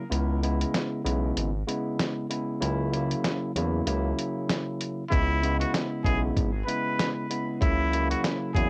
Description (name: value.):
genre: hip hop, boom-bap hip-hop.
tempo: 96 BPM.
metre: 4/4.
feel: swing 56% on 16ths.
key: C# dorian.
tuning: A4 = 440 Hz.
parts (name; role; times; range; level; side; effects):
tine electric piano; accompaniment; 0.0-8.7 s; C#3 to E4; -32 LUFS; equal; high-pass filter, low-pass filter, cassette tape.
smooth gliding synth bass; bass; 0.1-8.7 s; G#1 to E2; -30 LUFS; equal; none.
lo-fi sampler-style drum kit; drums; 0.1-8.7 s; hi-hat, kick drum, snare drum; -31 LUFS; equal; cassette tape.
trumpet with straight mute; melody; 5.1-8.7 s; E4 to B4; -33 LUFS; equal; high-pass filter, low-pass filter, cassette tape, tape echo.
room: light reverb.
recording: home recording on cassette.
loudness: -28 LUFS.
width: mono.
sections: 0.0-8.7 A section.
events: break 0.0-5.1.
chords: 0.1 C#m7; 2.6 F#7/C#; 5.1 C#m7; 7.6 F#7/C#.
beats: | 0.12 0.74 1.36 1.99 | 2.62 3.24 3.87 4.49 | 5.12 5.74 6.37 6.99 | 7.62 8.24.